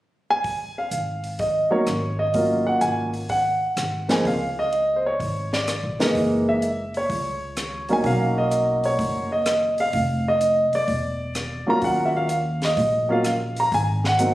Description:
jazz piano trio; 127 BPM; 4/4; swing 68% on 8ths; Db major; A4 = 440 Hz
warm concert grand piano; melody; 0.3-14.3 s; Db2 to Bb5; -21 LUFS; equal; plate reverb
compact cocktail drum kit; drums; 0.4-14.3 s; hi-hat, kick drum, rim click, snare drum; -31 LUFS; equal
upright bass; bass; 0.9-14.3 s; E1 to Eb2; -28 LUFS; equal
moderate small room reverb, RT60 0.5 s; recorded on a phone in the room, studio reverb; -20 LUFS; side -16 dB against mid
0.4-4.2 A section; 4.2-14.3 B section
0.4 Absus4; 4.2 Dbsus2; 6.1 Gb13; 8.0 Cbmaj9; 9.9 N.C.; 11.8 Ebm9; 13.7 Ab7

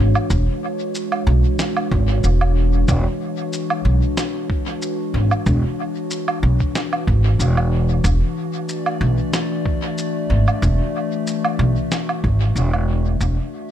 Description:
ambient dub; 93 BPM; 4/4; swing 54% on 16ths; E mixolydian; A4 = 440 Hz
warbly tape-like pad; sustained chords; 0.0-13.7 s; E3 to E5; -24 LUFS; left 2 dB; chorus, built-in reverb
upright bass; bass; 0.0-13.4 s; E1 to B1; -17 LUFS; equal
electronic woodblock, shaker and snare drum; drums; 0.2-13.3 s; -26 LUFS; right 2 dB; studio reverb, dub echo
electronic kick drum; drums; 0.3-13.3 s; -22 LUFS; equal; studio reverb
digital ambience; echo-heavy mix; -17 LUFS; side -10 dB against mid
0.0-13.7 A section
fade-out 11.5-13.7
0.0 E13; 8.0 Dadd9/E

